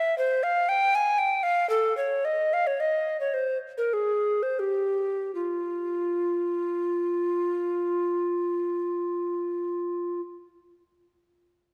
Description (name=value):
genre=classical, baroque-style fantasia for unaccompanied recorder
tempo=79-121 BPM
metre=3/4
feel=rubato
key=F minor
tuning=A4 = 440 Hz
part: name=mellow hollow tenor recorder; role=solo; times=0.0-10.2 s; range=F4 to Ab5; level=-27 LUFS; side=equal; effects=none
room=wet scoring stage reverb, RT60 2.0 s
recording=none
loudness=-27 LUFS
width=mono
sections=0.0-5.3 A section; 5.3-9.8 B section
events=slowing down 0.9-5.3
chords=none